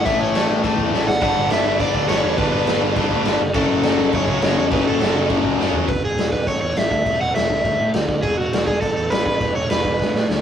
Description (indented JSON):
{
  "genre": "punk rock",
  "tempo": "205 BPM",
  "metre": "4/4",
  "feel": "straight",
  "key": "unclear",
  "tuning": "A4 = 440 Hz",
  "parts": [
    { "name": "overdriven semi-hollow guitar", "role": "melody", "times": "0.0-10.2 s", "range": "F#4 to F#5", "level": "-22 LUFS", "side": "right 1 dB", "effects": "none" },
    { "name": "cranked stack guitar", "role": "riff", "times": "0.0-5.9 s", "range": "F#2 to A3", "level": "-20 LUFS", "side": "left 5 dB", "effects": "overdrive" },
    { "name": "fuzz picked electric bass", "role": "bass", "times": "0.0-10.4 s", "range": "E1 to A2", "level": "-26 LUFS", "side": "right 1 dB", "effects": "overdrive" },
    { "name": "raw garage drum kit", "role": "drums", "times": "0.1-10.4 s", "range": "crash cymbal, kick drum, snare drum, toms", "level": "-21 LUFS", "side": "equal", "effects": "none" },
    { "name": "tight distorted guitar", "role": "riff", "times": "1.2-5.9 s", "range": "F#2 to D4", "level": "-26 LUFS", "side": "right 7 dB", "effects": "distortion" }
  ],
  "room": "light reverb",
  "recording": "rough rehearsal-room recording",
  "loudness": "-16 LUFS",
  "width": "side -9 dB against mid",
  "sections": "0.0-5.9 A section; 5.9-10.4 B section",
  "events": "drum fill 0.9, 5.6, 10.0-10.4",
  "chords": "0.0 A; 1.1 G; 3.4 F#m; 5.9 E; 6.5 A5; 7.1 C#madd11/E; 7.6 D5; 8.2 Eadd9; 8.8 A5; 9.4 E5"
}